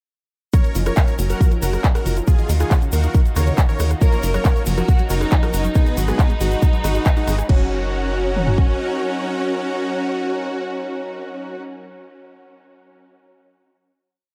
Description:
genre	uplifting trance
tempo	138 BPM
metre	4/4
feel	straight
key	F# major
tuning	A4 = 439 Hz
part	dense compressed supersaw	melody	0.5-11.6 s	B3 to C#5	-29 LUFS	equal	sidechain pumping, tape echo
part	lush unison pad	sustained chords	0.5-11.6 s	D#3 to B4	-33 LUFS	equal	chorus, sidechain pumping
part	tight sequenced synth	arpeggios	0.5-7.7 s	C#3 to G#4	-32 LUFS	equal	chorus, phaser, sidechain pumping, delay
part	house drum kit	drums	0.5-8.7 s	kick drum, toms	-18 LUFS	equal	studio reverb
part	house drum kit	drums	0.5-7.6 s	crash cymbal, handclaps, hi-hat, rim click	-31 LUFS	equal	sidechain pumping on hats, studio reverb, sidechain pumping on cymbals
part	egg shaker	percussion	0.5-7.5 s	none	-38 LUFS	equal	none
part	tight sequencer bass	bass	0.8-8.8 s	F#1 to D#2	-23 LUFS	equal	sidechain pumping
part	warm studio violin section	second line	4.0-11.6 s	A#3 to A#4	-29 LUFS	equal	dub echo
room	little or no reverb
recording	none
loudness	-19 LUFS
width	mono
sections	0.5-7.5 drop; 7.5-11.0 final chord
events	drop 0.5-7.5; band accent 7.1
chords	0.5 F#6; 2.3 D#madd9; 4.0 F#6; 5.8 G#m7; 7.5 F#6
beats	| 0.54 0.97 1.41 1.84 | 2.27 2.71 3.15 3.58 | 4.01 4.45 4.88 5.32 | 5.75 6.19 6.62 7.06 | 7.49 7.93 8.36 8.80 | 9.23 9.67 10.10 10.54

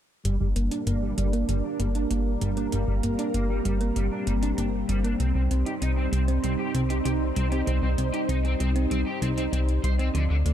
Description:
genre	synthwave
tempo	97 BPM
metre	4/4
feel	straight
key	G minor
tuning	A4 = 440 Hz
part	thumb-piano-like synth pluck	arpeggios	0.2-10.5 s	F3 to Eb4	-32 LUFS	right 4 dB	chorus, ping-pong delay
part	overdriven semi-hollow guitar	riff	0.2-10.3 s	D3 to C5	-36 LUFS	left 2 dB	ensemble chorus, low-pass filter, ping-pong delay
part	chorused synth bass	bass	0.2-10.5 s	G1 to D2	-25 LUFS	equal	none
part	electronic hi-hat	drums	0.2-10.5 s	none	-39 LUFS	right 1 dB	overdrive
part	string machine, full ensemble	sustained chords	0.3-10.5 s	G3 to D5	-30 LUFS	right 1 dB	phaser, ensemble chorus
room	digital ambience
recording	none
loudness	-23 LUFS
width	side -10 dB against mid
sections	0.2-10.5 A section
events	filter sweep on analog synth bass 0.2-10.5; filter sweep on string machine 0.2-10.5; filter sweep on synth arpeggio sound 0.2-10.5; filter sweep on overdriven electric guitar 0.2-10.5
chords	0.2 Gm; 5.2 Cm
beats	| 0.25 0.87 1.49 2.11 | 2.73 3.34 3.96 4.58 | 5.20 5.82 6.44 7.05 | 7.67 8.29 8.91 9.53 | 10.15

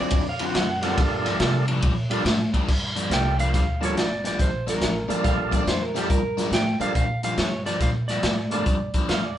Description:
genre	electric blues shuffle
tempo	140 BPM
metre	4/4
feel	swing 65% on 8ths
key	G minor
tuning	A4 = 440 Hz
part	electric guitar through a small old amp	second line	0.0-1.0, 5.2-6.4, 9.1-9.4 s	G4 to F#5	-29 LUFS	right 3 dB	none
part	overdriven semi-hollow guitar	riff	0.0-9.2 s	G2 to E#4	-28 LUFS	left 2 dB	phaser
part	upright bass	bass	0.1-9.4 s	G1 to C3	-28 LUFS	equal	none
part	crunchy breakbeat drum kit	drums	0.1-9.2 s	crash cymbal, hi-hat, kick drum, ride cymbal, snare drum	-25 LUFS	equal	none
part	overdriven tonewheel organ	accompaniment	0.8-8.7 s	G3 to A4	-28 LUFS	right 3 dB	slow rotary speaker
part	clean lap steel guitar	melody	3.1-9.3 s	Bb4 to G5	-29 LUFS	right 2 dB	none
room	moderate studio reverb, RT60 0.7 s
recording	band playing live in one room, nothing above 10.9 kHz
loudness	-21 LUFS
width	side -11 dB against mid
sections	0.0-2.7 A section; 2.7-9.4 B section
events	clean electric guitar solo 0.0-2.7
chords	0.0 D7#9; 1.0 Gm7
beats	0.13 0.55 | 0.98 1.40 1.83 2.26 | 2.68 3.11 3.54 3.96 | 4.39 4.82 5.24 5.67 | 6.10 6.53 6.95 7.38 | 7.81 8.23 8.66 9.09

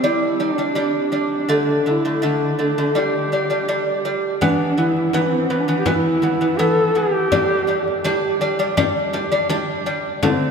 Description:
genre	mongolian traditional, Mongolian folk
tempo	82 BPM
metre	4/4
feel	straight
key	G zhi mode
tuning	A4 = 439 Hz
part	dark horsehead fiddle	melody	0.0-10.5 s	C4 to A4	-21 LUFS	right 1 dB	none
part	lute	arpeggios	0.0-10.5 s	D3 to D4	-19 LUFS	equal	none
part	frame drum	percussion	4.4-10.4 s	none	-26 LUFS	left 5 dB	none
room	wet cathedral reverb, RT60 5.3 s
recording	in a vast, echoing space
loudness	-17 LUFS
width	side -6 dB against mid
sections	0.0-4.4 A section; 4.4-10.5 B section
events	none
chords	0.0 G5; 1.5 D5; 3.0 G5; 4.4 E5; 7.3 G5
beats	0.04 0.78 | 1.50 2.23 2.96 3.69 | 4.42 5.15 5.88 6.60 | 7.33 8.05 8.78 9.51 | 10.23

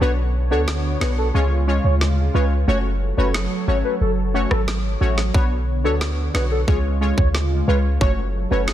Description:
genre	dancehall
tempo	90 BPM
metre	4/4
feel	straight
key	F# harmonic minor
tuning	A4 = 439 Hz
part	warm velvety synth lead	melody	0.0-8.6 s	G#4 to C#5	-26 LUFS	equal	chorus, ping-pong delay
part	synth brass stab	accompaniment	0.0-8.7 s	G#3 to C#5	-25 LUFS	left 1 dB	chorus
part	warm analog pad	sustained chords	0.0-8.7 s	C#3 to C#5	-28 LUFS	right 1 dB	chorus, sidechain pumping
part	clean 808-style bass	bass	0.0-8.7 s	F#1 to D2	-20 LUFS	equal	none
part	island pop drum kit	drums	0.7-8.7 s	kick drum, rim click, snare drum	-24 LUFS	equal	none
room	digital ambience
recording	dense, heavily limited modern master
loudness	-17 LUFS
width	side -12 dB against mid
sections	0.0-8.7 A section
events	break 0.0-5.3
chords	0.0 Bmadd9; 1.3 C#; 2.7 F#m; 5.3 Bmadd9; 6.7 C#; 8.0 F#m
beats	| 0.01 0.68 1.34 2.01 | 2.68 3.34 4.01 4.68 | 5.34 6.01 6.68 7.34 | 8.01 8.68

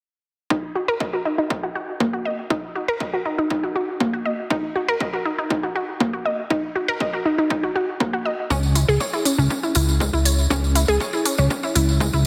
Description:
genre	melodic techno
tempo	120 BPM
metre	4/4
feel	straight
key	Eb phrygian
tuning	A4 = 440 Hz
part	unison pluck	arpeggios	0.5-12.2 s	Ab3 to Eb5	-24 LUFS	equal	sidechain pumping, dub echo
part	electronic kick drum	drums	0.5-12.1 s	none	-29 LUFS	equal	high-pass filter on kick, high-pass filter on room
part	fat analog bass	bass	8.5-12.3 s	Db2	-21 LUFS	equal	sidechain pumping
part	tambourine	percussion	8.5-12.2 s	none	-30 LUFS	equal	none
part	electronic hi-hat	drums	8.8-11.9 s	none	-27 LUFS	equal	none
room	moderate scoring stage reverb, RT60 1.8 s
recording	heavily compressed radio sound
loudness	-22 LUFS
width	mono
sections	0.5-12.3 A section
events	none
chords	0.5 Ebm; 8.5 Dbm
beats	| 0.51 1.00 1.50 2.00 | 2.50 3.00 3.50 4.00 | 4.50 5.00 5.50 6.00 | 6.50 7.00 7.50 8.01 | 8.51 9.01 9.51 10.01 | 10.51 11.01 11.51 12.01

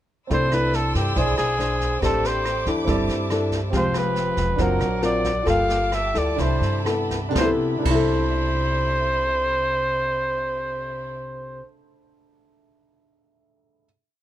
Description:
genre	bossa nova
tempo	120-140 BPM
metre	4/4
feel	straight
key	C major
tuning	A4 = 440 Hz
part	clear flugelhorn	melody	0.3-11.7 s	G4 to F5	-24 LUFS	equal	none
part	nylon-string guitar	accompaniment	0.3-11.8 s	C3 to C5	-26 LUFS	left 3 dB	none
part	warm grand piano	accompaniment	0.3-13.9 s	C4 to B5	-31 LUFS	right 5 dB	none
part	warm symphonic violin section	sustained chords	0.3-11.1 s	A4 to E6	-33 LUFS	equal	none
part	upright bass	bass	0.3-11.6 s	E1 to G2	-26 LUFS	right 1 dB	none
part	jazz brush drum kit	drums	0.3-8.0 s	crash cymbal, kick drum, rim click, snare drum	-29 LUFS	equal	none
room	little or no reverb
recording	none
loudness	-20 LUFS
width	side -12 dB against mid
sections	0.3-7.4 A section; 7.4-11.3 final chord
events	slowing down 3.7-7.4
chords	0.3 C69; 1.2 E7b13/B; 2.0 Am11; 2.9 C69/G; 3.7 Fmadd9; 4.6 D7alt/F#; 5.5 Gm9; 6.4 Cmaj13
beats	| 0.31 0.74 1.17 1.59 | 2.02 2.45 2.87 3.30 | 3.73 4.16 4.59 5.02 | 5.47 5.92 6.38 6.86 | 7.35 7.85 8.35 8.85 | 9.35 9.85 10.34 10.84

